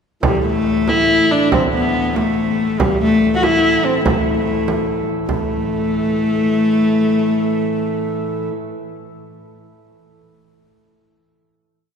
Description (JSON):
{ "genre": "medieval dance", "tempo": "96 BPM (dotted quarters)", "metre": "6/8", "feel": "uneven beats", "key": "unclear", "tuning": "A4 = 439 Hz", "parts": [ { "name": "chamber organ, principal chorus", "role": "drone", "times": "0.2-8.5 s", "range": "A2 to E3", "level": "-22 LUFS", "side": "equal", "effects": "none" }, { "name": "frame drum", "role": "percussion", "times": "0.2-5.5 s", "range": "none", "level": "-22 LUFS", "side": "right 3 dB", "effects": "none" }, { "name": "rich viola da gamba", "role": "melody", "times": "0.3-8.5 s", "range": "G3 to F#4", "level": "-16 LUFS", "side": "left 1 dB", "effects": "none" } ], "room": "wet church reverb, RT60 3.8 s", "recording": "band playing live in one room", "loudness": "-14 LUFS", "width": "side -6 dB against mid", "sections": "0.2-5.3 A section; 5.3-7.7 final chord", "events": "speeding up 0.2-7.7", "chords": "none" }